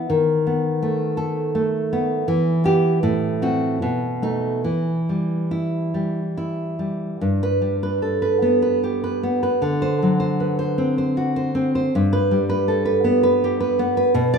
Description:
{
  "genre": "romantic piece for solo classical guitar",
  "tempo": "69-85 BPM",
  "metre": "3/4",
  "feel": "rubato",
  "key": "E minor, G major from 7.2 s",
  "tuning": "A4 = 440 Hz",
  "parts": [
    { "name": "nylon-string guitar", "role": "solo", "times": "0.0-14.4 s", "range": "G2 to D5", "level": "-18 LUFS", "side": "equal", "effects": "none" }
  ],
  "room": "wet recital hall reverb, RT60 1.5 s",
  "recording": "minimal, uncompressed stereo recording",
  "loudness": "-18 LUFS",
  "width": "side -6 dB against mid",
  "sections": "0.0-7.2 A section; 7.2-14.4 B section",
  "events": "none",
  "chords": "0.1 B7/D#; 2.3 Em; 3.0 F#dim/A; 3.8 B7; 4.6 Em; 7.2 G; 9.6 D7; 11.9 G"
}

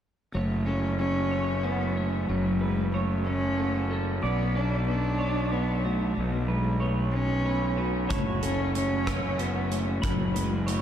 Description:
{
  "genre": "post-rock",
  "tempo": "62 BPM (dotted quarters)",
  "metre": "6/8",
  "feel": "straight",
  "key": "F# minor",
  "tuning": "A4 = 437 Hz",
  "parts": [
    { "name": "dark cello", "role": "melody", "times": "0.3-10.8 s", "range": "F#3 to D4", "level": "-29 LUFS", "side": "right 1 dB", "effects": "diffuse ambient delay" },
    { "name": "electric guitar through a small old amp", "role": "arpeggios", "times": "0.3-10.8 s", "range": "A4 to D5", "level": "-37 LUFS", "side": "right 3 dB", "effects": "lush chorus, diffuse ambient delay" },
    { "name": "twelve-string electric guitar", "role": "arpeggios", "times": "0.3-10.8 s", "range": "B2 to C#5", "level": "-32 LUFS", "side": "left 2 dB", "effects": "ensemble chorus, diffuse ambient delay" },
    { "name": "fuzz fingered electric bass", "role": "bass", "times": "0.3-10.8 s", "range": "F#1 to B1", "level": "-29 LUFS", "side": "equal", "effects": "overdrive" },
    { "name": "pedal steel guitar", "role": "sustained chords", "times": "8.1-10.8 s", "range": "F#4 to C#6", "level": "-39 LUFS", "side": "left 1 dB", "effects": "wide subtle chorus" },
    { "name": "huge arena drum kit", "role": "drums", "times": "8.1-10.8 s", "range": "hi-hat, kick drum, rim click", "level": "-32 LUFS", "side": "equal", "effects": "none" }
  ],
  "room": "wet cathedral reverb, RT60 6.1 s",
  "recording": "dreamy mix soaked in reverb, lossy compression artefacts",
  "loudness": "-25 LUFS",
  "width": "side -10 dB against mid",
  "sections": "0.3-10.8 A section",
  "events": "none",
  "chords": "0.3 F#m; 4.2 Bmadd9; 8.1 F#m"
}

